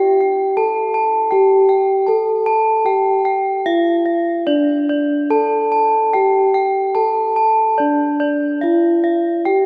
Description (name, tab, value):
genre	gamelan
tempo	72-84 BPM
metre	4/4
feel	straight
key	unclear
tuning	A4 = 439 Hz
part	gamelan-type bronze metallophone	melody	0.0-9.7 s	D4 to A4	-18 LUFS	equal	none
part	gamelan-type bronze metallophone	arpeggios	0.0-9.7 s	D5 to A5	-20 LUFS	equal	none
room	wet church reverb, RT60 3.4 s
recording	recorded in a church or concert hall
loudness	-16 LUFS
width	mono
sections	0.0-4.5 A section; 4.5-9.7 B section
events	none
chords	none